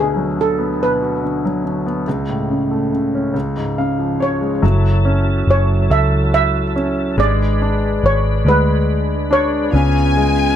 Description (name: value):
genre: pop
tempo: 47 BPM (dotted quarters)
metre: 6/8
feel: straight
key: F# minor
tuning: A4 = 440 Hz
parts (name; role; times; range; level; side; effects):
- steel pan; melody; 0.0-10.6 s; G#4 to E5; -19 LUFS; right 2 dB; digital delay
- clear concert grand piano; accompaniment; 0.0-10.6 s; C#2 to E#5; -19 LUFS; left 1 dB; none
- tonewheel organ; sustained chords; 4.6-10.6 s; C#3 to B4; -23 LUFS; equal; chorus vibrato, slow rotary speaker
- vintage muted fingered electric bass; bass; 4.6-10.5 s; F#1 to D2; -16 LUFS; equal; none
- rich studio violin section; second line; 9.7-10.6 s; G#5; -19 LUFS; left 3 dB; none
room: light reverb, small room ambience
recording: none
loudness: -14 LUFS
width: side -10 dB against mid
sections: 0.0-4.6 A section; 4.6-10.6 B section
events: grand piano fill 3.3-4.6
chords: 0.0 Bm/D; 2.1 Aadd9/C#; 3.3 C#; 4.6 F#m7; 7.2 G#dim; 9.7 C#7